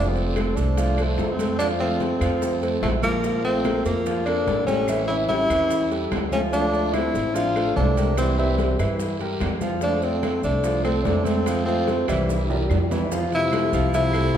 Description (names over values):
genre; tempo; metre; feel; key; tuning
Afro-Cuban jazz; 146 BPM; 4/4; straight; F major; A4 = 436 Hz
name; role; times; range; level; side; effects
breathy tenor saxophone; melody; 0.0-14.4 s; G3 to F4; -24 LUFS; equal; none
breathy trombone; second line; 0.0-14.4 s; C3 to D4; -28 LUFS; left 3 dB; none
clear grand piano; accompaniment; 0.0-14.4 s; E3 to F5; -27 LUFS; right 2 dB; none
upright bass; bass; 0.0-14.4 s; F1 to G2; -26 LUFS; equal; none
congas; percussion; 0.2-14.4 s; none; -33 LUFS; left 3 dB; none
maracas; percussion; 0.2-14.4 s; none; -44 LUFS; right 6 dB; none
timbales; percussion; 0.2-14.4 s; none; -35 LUFS; right 4 dB; none
bongos; percussion; 0.4-14.4 s; none; -34 LUFS; left 5 dB; none
claves; percussion; 0.4-14.3 s; none; -44 LUFS; left 3 dB; none
guiro; percussion; 0.4-14.4 s; none; -42 LUFS; right 4 dB; none
room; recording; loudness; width
wet recital hall reverb, RT60 1.8 s; recorded in a church or concert hall; -20 LUFS; side -9 dB against mid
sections
0.0-13.1 A section; 13.1-14.4 B section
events
drum fill 12.3-13.1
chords
0.0 F6; 1.6 F; 3.2 Bbmaj7; 4.9 A7; 6.5 Dm9; 8.2 C7; 9.8 F6; 12.3 C7; 13.1 Fmaj7